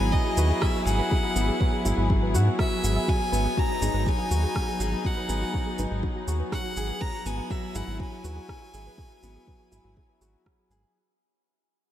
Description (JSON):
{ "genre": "piano and strings electronica", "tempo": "122 BPM", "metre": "4/4", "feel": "straight", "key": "unclear", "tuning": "A4 = 439 Hz", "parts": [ { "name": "clear violin", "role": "melody", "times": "0.0-10.4 s", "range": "D#5 to A#5", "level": "-32 LUFS", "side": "equal", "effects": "diffuse ambient delay" }, { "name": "dark string quartet", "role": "sustained chords", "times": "0.0-11.0 s", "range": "F#3 to G#4", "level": "-33 LUFS", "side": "left 1 dB", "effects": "sidechain pumping" }, { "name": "soft round pluck", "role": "arpeggios", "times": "0.0-10.9 s", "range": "F#4 to F#5", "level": "-38 LUFS", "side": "right 4 dB", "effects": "chorus, sidechain pumping, diffuse ambient delay" }, { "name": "clear upright piano", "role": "riff", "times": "0.0-11.0 s", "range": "F#3 to G#4", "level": "-31 LUFS", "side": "left 2 dB", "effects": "diffuse ambient delay" }, { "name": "round analog bass", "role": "bass", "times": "0.0-10.8 s", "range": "G#1 to G#2", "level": "-26 LUFS", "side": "equal", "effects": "sidechain pumping" }, { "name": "electronic kick drum", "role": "drums", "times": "0.1-10.6 s", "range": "none", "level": "-27 LUFS", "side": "equal", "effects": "small room reverb" }, { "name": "electronic shaker and rim click", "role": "drums", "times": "0.4-10.8 s", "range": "none", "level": "-37 LUFS", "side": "right 1 dB", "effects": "small room reverb" } ], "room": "moderate huge ambient reverb, RT60 8.3 s", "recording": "dreamy mix soaked in reverb", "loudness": "-23 LUFS", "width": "side -11 dB against mid", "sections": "0.0-11.0 A section", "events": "drop 0.0-11.0; fade-out 3.1-11.0", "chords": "0.0 Eadd9/G#; 3.1 G#m7; 7.0 Eadd9/G#" }